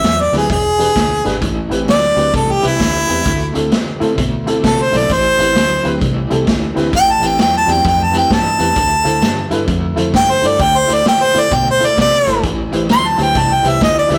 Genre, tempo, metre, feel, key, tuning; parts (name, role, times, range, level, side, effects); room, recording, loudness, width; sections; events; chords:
electric blues shuffle; 131 BPM; 4/4; swing 64% on 8ths; A minor; A4 = 442 Hz
clear harmonica; melody; 0.0-14.2 s; E4 to C6; -16 LUFS; equal
crunchy overdriven guitar; riff; 0.0-14.2 s; E2 to B3; -26 LUFS; equal; tremolo
fingered electric bass; bass; 0.0-14.2 s; E1 to C3; -23 LUFS; equal
raw garage drum kit; drums; 0.0-14.2 s; hi-hat, kick drum, snare drum; -22 LUFS; equal
warm upright piano; accompaniment; 0.3-14.2 s; C4 to D5; -24 LUFS; equal
moderate stone room reverb, RT60 1.4 s; rough rehearsal-room recording, warm saturation; -14 LUFS; mono
0.0-1.4 A section; 1.4-14.2 B section
harmonica solo 1.4-14.2
0.5 E7#9; 1.4 Am7; 3.3 Dm7; 5.1 Am7; 8.8 Dm7; 12.4 Am7